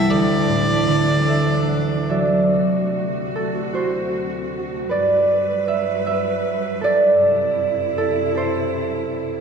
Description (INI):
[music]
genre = celtic folk, Celtic slow air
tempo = 48-53 BPM (dotted quarters)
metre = 6/8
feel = rubato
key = D mixolydian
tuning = A4 = 442 Hz
[part]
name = clear fiddle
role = melody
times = 0.0-2.1 s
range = D5 to E5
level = -24 LUFS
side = equal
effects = none
[part]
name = concert harp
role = accompaniment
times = 0.0-9.4 s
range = C2 to F#5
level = -18 LUFS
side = right 2 dB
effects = none
[part]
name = bright studio string section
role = sustained chords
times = 0.0-9.4 s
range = D2 to B4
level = -26 LUFS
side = equal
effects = none
[sound]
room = wet cathedral reverb, RT60 4.6 s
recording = recorded in a church or concert hall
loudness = -17 LUFS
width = side -6 dB against mid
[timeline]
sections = 0.0-2.5 A section; 2.5-9.4 B section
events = harp fill 1.3-2.5; harp solo 2.5-9.4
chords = 0.1 Dadd9; 2.5 D7; 4.9 Gmaj7; 7.2 D7/F#